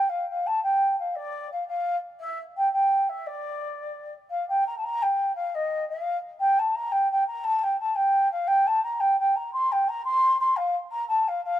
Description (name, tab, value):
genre	celtic folk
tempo	115 BPM (dotted quarters)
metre	6/8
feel	straight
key	D minor, G minor from 4.3 s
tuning	A4 = 440 Hz
part	mellow baroque flute	solo	0.0-11.6 s	D5 to C6	-23 LUFS	equal	none
room	light reverb, small room ambience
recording	rough home demo mix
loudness	-23 LUFS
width	side -12 dB against mid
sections	0.0-4.3 A section; 4.3-11.6 B section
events	none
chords	none